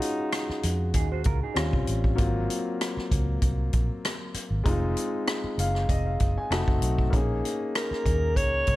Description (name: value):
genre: lush 1970s-style soul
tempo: 97 BPM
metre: 4/4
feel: swing 54% on 16ths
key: Bb minor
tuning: A4 = 438 Hz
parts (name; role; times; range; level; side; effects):
- breathy alto saxophone; melody; 0.0-0.9, 7.8-8.8 s; Eb4 to Db5; -28 LUFS; equal; none
- warm concert grand piano; accompaniment; 0.0-8.8 s; Gb3 to A5; -30 LUFS; left 2 dB; none
- vintage drum kit; drums; 0.0-8.8 s; hi-hat, kick drum, rim click; -27 LUFS; equal; none
- vintage muted fingered electric bass; bass; 0.5-8.8 s; F1 to F2; -27 LUFS; equal; none
- mellow electric guitar; riff; 0.9-1.7 s; Eb4 to C5; -35 LUFS; right 8 dB; none
room: small room ambience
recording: none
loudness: -24 LUFS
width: side -16 dB against mid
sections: 0.0-8.8 A section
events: grand piano fill 5.3-7.1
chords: 0.0 Ebm11; 1.6 Eb13; 2.2 Ab13; 4.7 Fm7; 6.5 F7b9; 7.1 Bbm11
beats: 0.33 0.95 1.57 | 2.19 2.80 3.42 4.04 | 4.66 5.28 5.90 6.51 | 7.13 7.75 8.37